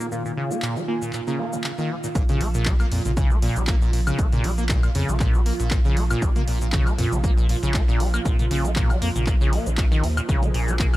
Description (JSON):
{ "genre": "acid house", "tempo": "118 BPM", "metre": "4/4", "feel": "swing 54% on 16ths", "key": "Bb minor", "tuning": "A4 = 439 Hz", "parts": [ { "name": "warm analog pad", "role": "sustained chords", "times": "0.0-11.0 s", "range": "Bb2 to Ab4", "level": "-32 LUFS", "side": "right 3 dB", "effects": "chorus, sidechain pumping" }, { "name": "liquid acid bass", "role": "riff", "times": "0.0-11.0 s", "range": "Bb2 to Bb3", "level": "-26 LUFS", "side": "equal", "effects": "overdrive, lush chorus, cassette tape, tape echo" }, { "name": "punchy analog drum machine", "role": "drums", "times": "0.0-11.0 s", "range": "handclaps, hi-hat, shaker, toms, woodblock", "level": "-30 LUFS", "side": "equal", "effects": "none" }, { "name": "deep mellow chord stab", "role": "stabs", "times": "0.1-1.9 s", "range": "Bb3 to Bb5", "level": "-30 LUFS", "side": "right 2 dB", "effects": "chorus, phaser, tape echo" }, { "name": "saturated sub bass", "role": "bass", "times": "2.2-11.0 s", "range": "Bb1 to F2", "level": "-24 LUFS", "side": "equal", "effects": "sidechain pumping" }, { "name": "electronic kick drum", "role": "drums", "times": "2.2-10.9 s", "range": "none", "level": "-21 LUFS", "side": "equal", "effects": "none" } ], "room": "digital ambience", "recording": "dry, gritty hardware recording", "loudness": "-19 LUFS", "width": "side -16 dB against mid", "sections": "0.0-2.2 A section; 2.2-11.0 B section", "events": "filter sweep on synth stab 0.0-2.2; drop 2.2-11.0", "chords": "0.0 Bb5" }